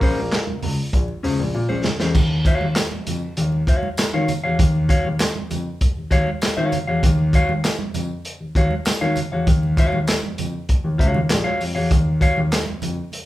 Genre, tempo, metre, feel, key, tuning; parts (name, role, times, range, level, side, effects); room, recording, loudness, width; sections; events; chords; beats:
funk; 98 BPM; 4/4; straight; A4 = 440 Hz
growling trombone; melody; 0.0-0.6 s; Bb3; -28 LUFS; right 1 dB
clean electric guitar; accompaniment; 0.0-12.4 s; Db4 to F5; -24 LUFS; left 2 dB
dark grand piano; bass; 0.0-12.9 s; Bb1 to Eb3; -22 LUFS; left 1 dB
crunchy breakbeat drum kit; drums; 0.0-13.3 s; crash cymbal, handclaps, hi-hat, kick drum, snare drum; -20 LUFS; equal
congas; percussion; 0.2-13.3 s; -31 LUFS; right 6 dB
tambourine; percussion; 2.2-13.0 s; -37 LUFS; equal
light reverb; band playing live in one room; -18 LUFS; side -15 dB against mid
0.0-2.2 A section; 2.2-13.3 B section
drum fill 1.5-2.2
0.0 Bbm9; 2.2 Ebm9
0.32 0.93 1.54 | 2.15 2.76 3.37 3.98 | 4.59 5.20 5.81 6.42 | 7.03 7.64 8.25 8.86 | 9.47 10.08 10.69 11.30 | 11.91 12.52 13.13